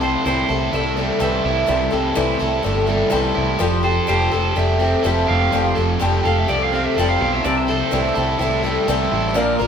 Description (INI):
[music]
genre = rock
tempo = 125 BPM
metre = 4/4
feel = straight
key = C mixolydian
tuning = A4 = 440 Hz
[part]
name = electric guitar through a small old amp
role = second line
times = 0.0-9.1 s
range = C5 to F5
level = -24 LUFS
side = right 2 dB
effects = none
[part]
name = picked twelve-string acoustic guitar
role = accompaniment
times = 0.0-9.7 s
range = Bb2 to Bb4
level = -21 LUFS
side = left 3 dB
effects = none
[part]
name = overdriven electric guitar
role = riff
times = 0.0-9.7 s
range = Bb2 to Bb4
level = -21 LUFS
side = right 2 dB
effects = none
[part]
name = picked electric bass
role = bass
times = 0.0-9.7 s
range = F1 to C2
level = -22 LUFS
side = equal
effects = none
[part]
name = accordion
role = sustained chords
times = 7.5-9.7 s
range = A4 to D6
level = -29 LUFS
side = right 2 dB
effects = none
[sound]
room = wet large studio reverb, RT60 1.2 s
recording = band playing live in one room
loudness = -16 LUFS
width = side -7 dB against mid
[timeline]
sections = 0.0-9.7 A section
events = clean electric guitar solo 0.0-9.7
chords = 0.0 C6; 3.6 Fadd9; 7.4 C6